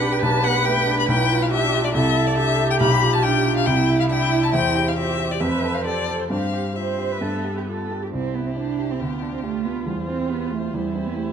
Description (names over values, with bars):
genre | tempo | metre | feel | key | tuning
quick classical-period movement for piano quartet | 138 BPM | 4/4 | straight | C major | A4 = 440 Hz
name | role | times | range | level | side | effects
rich violin | melody | 0.0-11.3 s | G4 to B5 | -24 LUFS | left 8 dB | none
dark cello | second line | 0.0-11.3 s | G3 to C5 | -25 LUFS | right 6 dB | none
rich viola | accompaniment | 0.0-11.3 s | B3 to G4 | -28 LUFS | right 3 dB | none
warm grand piano | accompaniment | 0.0-11.3 s | B1 to C5 | -23 LUFS | equal | none
room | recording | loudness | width
moderate recital hall reverb, RT60 1.6 s | close, detailed microphones | -19 LUFS | side -8 dB against mid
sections
0.0-8.1 A section; 8.1-11.3 B section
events
none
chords
0.0 G/B; 1.1 G7/B; 2.0 C; 2.8 G7/B; 3.7 C; 4.5 C/E; 5.4 F; 6.3 C/G; 7.2 G; 8.1 C; 9.0 G5/D; 9.9 C/E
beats
0.23 0.66 | 1.09 1.52 1.95 2.38 | 2.81 3.24 3.67 4.10 | 4.54 4.97 5.41 5.85 | 6.31 6.76 7.22 7.67 | 8.12 8.56 9.00 9.43 | 9.87 10.30 10.74 11.17